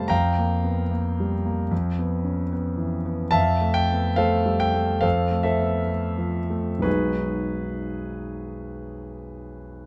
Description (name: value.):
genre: classical, impressionist solo piano.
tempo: 57-76 BPM.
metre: 4/4.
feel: rubato.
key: unclear.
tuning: A4 = 440 Hz.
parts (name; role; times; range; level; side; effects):
warm concert grand piano; solo; 0.0-9.9 s; B1 to B5; -24 LUFS; equal; none.
room: little or no reverb.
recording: close, detailed microphones.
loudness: -24 LUFS.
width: mono.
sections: 0.0-9.9 A section.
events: none.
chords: 0.1 Fsus24; 1.7 C#m7/E#; 3.3 Fmaj9; 5.0 Fmaj7; 6.9 B6.